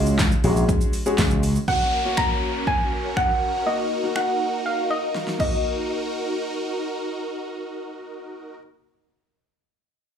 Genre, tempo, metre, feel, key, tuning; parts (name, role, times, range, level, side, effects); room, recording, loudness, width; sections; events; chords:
dance-pop; 121 BPM; 4/4; straight; Eb minor; A4 = 440 Hz
clear concert grand piano; accompaniment; 0.0-8.6 s; Ab3 to Ab4; -28 LUFS; left 3 dB; sidechain pumping, plate reverb, slapback echo
slap bass with an envelope filter; bass; 0.0-1.6 s; Bb1 to Db2; -20 LUFS; equal; sidechain pumping
deep house drum kit; drums; 0.1-5.5 s; crash cymbal, finger snaps, handclaps, hi-hat, kick drum, shaker, snare drum; -24 LUFS; equal; overdrive
tambourine; percussion; 0.2-1.3 s; -36 LUFS; right 3 dB
soft round pluck; melody; 1.7-8.6 s; Eb5 to Bb5; -24 LUFS; equal; chorus, digital delay, plate reverb, slapback echo
supersaw chords; sustained chords; 1.7-8.6 s; Db4 to Bb4; -29 LUFS; equal; sidechain pumping, plate reverb
downlifter; sound effects; 1.7-5.6 s; -33 LUFS; equal
light reverb; live gig heard through the venue's PA, club reverb; -20 LUFS; side -8 dB against mid
0.0-1.7 A section; 1.7-5.6 B section; 5.6-9.6 C section
drop 0.0-1.7; drum fill 5.2-5.6
0.0 Dbsus4; 1.7 Gb; 3.7 Ebm